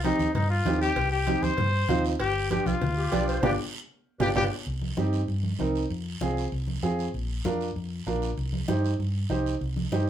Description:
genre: latin, cumbia.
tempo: 194 BPM.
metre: 4/4.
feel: straight.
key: C minor from 4.7 s.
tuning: A4 = 441 Hz.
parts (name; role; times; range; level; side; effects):
warm trumpet; melody; 0.0-4.4 s; Eb4 to C5; -28 LUFS; left 4 dB; none.
clear upright piano; accompaniment; 0.0-10.1 s; B3 to C5; -29 LUFS; right 2 dB; none.
hollow-body short-scale fingered electric bass; bass; 0.0-10.1 s; G1 to G2; -29 LUFS; equal; none.
congas; percussion; 0.0-10.1 s; none; -33 LUFS; equal; none.
cowbell and timbales; percussion; 0.0-4.4 s; none; -37 LUFS; right 3 dB; none.
guiro; percussion; 0.0-10.1 s; none; -42 LUFS; right 5 dB; none.
musette accordion; second line; 3.0-4.5 s; G4 to D5; -32 LUFS; left 1 dB; none.
room: wet studio ambience, RT60 0.5 s.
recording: heard from further back in the room.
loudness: -24 LUFS.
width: side -10 dB against mid.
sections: 0.0-4.7 A section; 4.7-10.1 B section.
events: band accent 3.4-4.7; drum fill 4.0-4.7.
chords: 0.0 Cm; 2.2 G7; 4.7 Cm; 5.9 Fm; 7.1 Bb; 8.4 Cm.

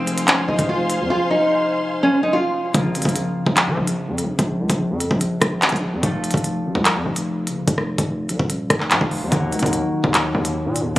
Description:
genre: hip hop, drill.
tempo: 146 BPM.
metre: 4/4.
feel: half-time.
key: Bb minor.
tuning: A4 = 441 Hz.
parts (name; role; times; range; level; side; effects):
nylon-string guitar; melody; 0.0-2.7 s; C4 to F4; -19 LUFS; equal; low-pass filter, ping-pong delay.
concert harp; accompaniment; 0.0-11.0 s; C3 to C5; -25 LUFS; left 1 dB; low-pass filter.
dark symphonic string section; sustained chords; 0.0-2.7 s; Ab4 to C6; -26 LUFS; left 1 dB; none.
distorted 808-style bass; bass; 0.0-11.0 s; Eb1 to F3; -23 LUFS; equal; distortion.
drill drum kit; drums; 0.1-11.0 s; handclaps, hi-hat, kick drum, rim click; -20 LUFS; equal; none.
room: light reverb.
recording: recorded on a phone in the room, club reverb.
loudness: -17 LUFS.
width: side -16 dB against mid.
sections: 0.0-2.7 A section; 2.7-11.0 B section.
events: drums muted 1.1-2.7.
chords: 0.0 Fm; 2.7 Bbmadd9; 6.0 F; 9.3 Ebm.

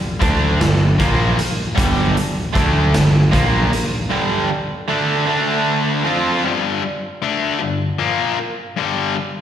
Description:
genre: quiet-loud alternative rock.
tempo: 51 BPM (dotted quarters).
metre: 6/8.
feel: straight.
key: G minor.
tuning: A4 = 439 Hz.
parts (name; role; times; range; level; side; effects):
cranked stack guitar; riff; 0.2-6.4 s; G2 to F4; -19 LUFS; right 6 dB; overdrive, slapback echo.
distorted electric guitar; riff; 0.2-9.2 s; G2 to F4; -20 LUFS; left 6 dB; overdrive, slapback echo.
fuzz picked electric bass; bass; 0.2-3.8 s; G1 to D2; -18 LUFS; equal; overdrive.
raw garage drum kit; drums; 0.2-3.9 s; hi-hat, kick drum, snare drum; -20 LUFS; equal; none.
room: light reverb.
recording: live gig heard through the venue's PA, recital hall reverb.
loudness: -15 LUFS.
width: side -10 dB against mid.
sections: 0.0-6.4 A section; 6.4-9.4 B section.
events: break 4.1-6.4.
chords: 0.0 Gm; 5.3 D5; 6.1 F5; 6.4 Gm.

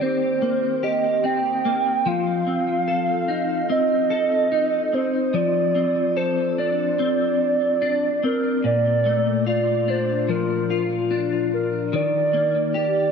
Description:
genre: dream pop.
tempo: 73 BPM.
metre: 4/4.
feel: straight.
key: Bb major.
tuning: A4 = 440 Hz.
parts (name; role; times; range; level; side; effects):
hollow clarinet-like synth lead; melody; 0.0-13.1 s; Bb4 to G5; -22 LUFS; right 3 dB; chorus, shimmer reverb, digital delay.
clean electric guitar; arpeggios; 0.0-13.1 s; Bb2 to A4; -22 LUFS; left 4 dB; ensemble chorus, shimmer reverb, digital delay.
room: wet scoring stage reverb, RT60 1.7 s.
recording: none.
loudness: -19 LUFS.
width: side -6 dB against mid.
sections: 0.0-8.6 A section; 8.6-13.1 A section.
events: none.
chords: 0.0 Eb6; 2.1 F7; 5.4 Dm7/F; 8.6 Bbmaj7; 11.9 Eb.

